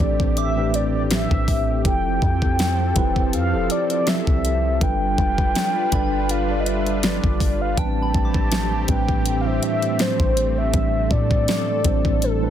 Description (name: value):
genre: contemporary R&B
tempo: 81 BPM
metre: 4/4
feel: swing 54% on 16ths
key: A minor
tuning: A4 = 441 Hz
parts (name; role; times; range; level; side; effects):
- mellow horn-like synth lead; melody; 0.0-12.5 s; A4 to A5; -24 LUFS; left 1 dB; chorus, tape echo
- mellow tine electric piano; accompaniment; 0.0-12.5 s; A2 to D5; -25 LUFS; right 1 dB; medium stereo tremolo
- warm analog pad; sustained chords; 0.0-12.5 s; F3 to B4; -29 LUFS; equal; chorus
- warm 808-style bass; bass; 0.0-12.5 s; F1 to A2; -24 LUFS; equal; none
- smooth R&B drum kit; drums; 0.0-12.4 s; hi-hat, kick drum, snare drum; -22 LUFS; equal; none
- soft synth bell; texture; 0.4-9.7 s; G5 to D6; -38 LUFS; right 4 dB; chorus, phaser, tape echo
room: digital ambience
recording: dense, heavily limited modern master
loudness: -18 LUFS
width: side -10 dB against mid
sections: 0.0-12.5 A section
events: none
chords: 0.0 Am11; 1.8 Fmaj9; 4.8 G7; 7.8 Am11